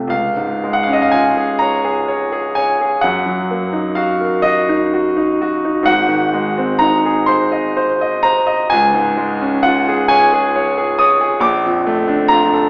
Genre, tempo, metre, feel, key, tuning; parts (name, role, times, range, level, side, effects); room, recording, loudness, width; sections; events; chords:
classical, romantic nocturne for solo piano; 39-46 BPM (dotted quarters); 12/8; rubato; Db major; A4 = 439 Hz
bright concert grand piano; solo; 0.0-12.7 s; Ab1 to Eb6; -12 LUFS; equal
wet recital hall reverb, RT60 1.6 s; recorded in a church or concert hall, AM radio sound; -12 LUFS; side -30 dB against mid
0.1-12.7 A section
0.1 Db; 3.0 Ebm/Gb; 5.9 Ab7; 8.7 Db; 11.4 Bbmaj7